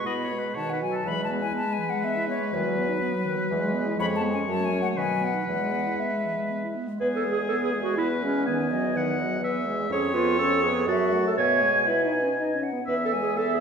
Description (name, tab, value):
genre	quick classical-period movement for wind quintet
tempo	122 BPM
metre	3/4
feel	rubato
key	E major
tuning	A4 = 440 Hz
part	silver concert flute	melody	0.0-13.6 s	G#4 to B5	-31 LUFS	left 4 dB	none
part	bright oboe	second line	0.0-13.6 s	G#4 to A5	-30 LUFS	left 1 dB	none
part	warm French horn	accompaniment	0.0-13.6 s	D#3 to E4	-31 LUFS	left 2 dB	none
part	warm clarinet	accompaniment	0.0-13.6 s	D#3 to C#5	-27 LUFS	right 3 dB	none
part	clear bassoon	bass	0.1-13.6 s	E2 to B2	-32 LUFS	right 2 dB	none
room	wet recital hall reverb, RT60 1.6 s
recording	heard from further back in the room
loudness	-23 LUFS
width	side -6 dB against mid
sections	0.0-7.0 A section; 7.0-13.6 A section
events	none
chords	0.0 E/B; 0.6 B; 1.1 E; 2.5 B/E; 3.5 E; 4.0 C#7/E#; 4.5 F#m; 5.0 B; 5.5 E; 8.5 B/E; 9.4 E; 9.9 C#7/E#; 10.9 F#m7; 11.4 E/B; 12.4 B; 12.9 E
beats	0.06 0.56 | 1.07 1.56 2.04 | 2.53 3.02 3.51 | 3.99 4.47 4.96 | 5.48 5.99 6.50 | 7.01 7.50 7.99 | 8.47 8.95 9.43 | 9.90 10.38 10.88 | 11.38 11.87 12.38 | 12.88 13.37